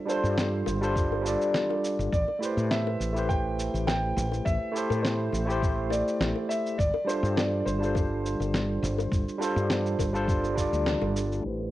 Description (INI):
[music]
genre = sunset chillout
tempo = 103 BPM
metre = 4/4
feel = swing 53% on 16ths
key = unclear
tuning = A4 = 443 Hz
[part]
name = barky tine electric piano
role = accompaniment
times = 0.0-11.7 s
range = G3 to D5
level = -29 LUFS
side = equal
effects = overdrive, auto-pan, cassette tape
[part]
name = dark grand piano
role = melody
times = 0.1-10.8 s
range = C5 to G5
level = -33 LUFS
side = equal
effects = cassette tape, tape echo
[part]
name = electronic cabasa and snare drum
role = drums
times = 0.1-11.7 s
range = none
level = -33 LUFS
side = equal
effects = low-pass filter on perc, studio reverb, cassette tape, low-pass filter on snare
[part]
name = bongos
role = percussion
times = 0.1-11.7 s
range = none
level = -36 LUFS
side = left 14 dB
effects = none
[part]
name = woody fretless electric bass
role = bass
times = 0.2-11.7 s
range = G1 to A2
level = -30 LUFS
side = equal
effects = none
[part]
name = electronic kick drum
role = drums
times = 1.0-10.7 s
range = none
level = -28 LUFS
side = equal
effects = studio reverb, cassette tape
[sound]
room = moderate small room reverb, RT60 0.5 s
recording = home recording on cassette, low-pass filter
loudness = -25 LUFS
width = side -15 dB against mid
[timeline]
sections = 0.0-11.4 A section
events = band accent 10.9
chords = 0.0 G7sus4; 2.1 Am7; 6.8 G7sus4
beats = 0.38 0.96 1.54 | 2.13 2.71 3.29 3.87 | 4.46 5.04 5.62 6.20 | 6.79 7.37 7.95 8.53 | 9.12 9.70 10.28 10.86 | 11.45